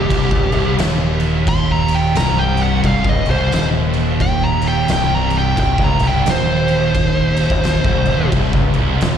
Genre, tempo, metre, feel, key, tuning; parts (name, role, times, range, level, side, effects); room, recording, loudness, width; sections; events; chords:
stoner and doom metal; 88 BPM; 4/4; swing 61% on 8ths; C minor; A4 = 440 Hz
fuzz lead guitar; melody; 0.0-8.3 s; G4 to C6; -20 LUFS; right 1 dB; distortion, slapback echo, analog delay
raw garage guitar; riff; 0.0-9.2 s; C2 to Eb2; -24 LUFS; left 1 dB; overdrive, slapback echo
thick fuzz guitar; riff; 0.0-9.2 s; C2 to Eb2; -22 LUFS; left 10 dB; distortion
thick fuzz guitar; riff; 0.0-9.2 s; C2 to Eb2; -20 LUFS; right 8 dB; distortion
growling fingered electric bass; bass; 0.0-9.2 s; C1 to Eb1; -21 LUFS; equal; overdrive, tube saturation
oversized low-tuned drum kit; drums; 0.1-9.2 s; crash cymbal, kick drum, snare drum; -20 LUFS; equal
little or no reverb; live gig heard through the venue's PA, recital hall reverb; -13 LUFS; side -8 dB against mid
0.0-9.2 A section
lead electric guitar solo 0.0-9.2
0.0 Cm